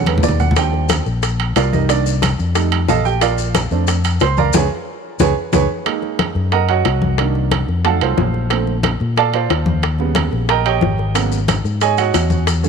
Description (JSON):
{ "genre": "Afro-Cuban jazz", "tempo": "181 BPM", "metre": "4/4", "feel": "straight", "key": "unclear", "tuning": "A4 = 440 Hz", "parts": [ { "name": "warm upright piano", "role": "accompaniment", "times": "0.0-12.7 s", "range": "C#3 to C6", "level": "-19 LUFS", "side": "right 12 dB", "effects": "none" }, { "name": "fingered electric bass", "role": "bass", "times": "0.0-12.7 s", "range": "G#1 to A#2", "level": "-18 LUFS", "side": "left 2 dB", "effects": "none" }, { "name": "congas", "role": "percussion", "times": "0.1-12.7 s", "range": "none", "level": "-22 LUFS", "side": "left 2 dB", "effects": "none" }, { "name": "timbales", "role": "percussion", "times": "0.1-12.6 s", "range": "none", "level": "-24 LUFS", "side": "right 12 dB", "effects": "none" }, { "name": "bongos", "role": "percussion", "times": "0.2-12.7 s", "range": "none", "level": "-23 LUFS", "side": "left 16 dB", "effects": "none" }, { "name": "maracas", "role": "percussion", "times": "0.2-5.6, 11.2-12.7 s", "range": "none", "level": "-29 LUFS", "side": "left 18 dB", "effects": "none" } ], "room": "light reverb, studio ambience", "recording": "1960s-style stereo with parts hard left and right", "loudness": "-14 LUFS", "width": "side -6 dB against mid", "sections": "0.0-5.9 A section; 5.9-12.7 A section", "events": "drum fill 0.0-0.6, 4.9-5.9; upright piano solo 0.0-12.7; band accent 4.5-5.9", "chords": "0.0 E13; 0.6 Ebmaj9; 1.9 Cm7; 2.6 F7; 3.2 Bbmaj7; 4.5 Db5; 5.9 F#6; 7.2 Cm9; 7.9 F7b9; 8.5 A#maj9; 9.8 D#7b13; 11.2 G#m11" }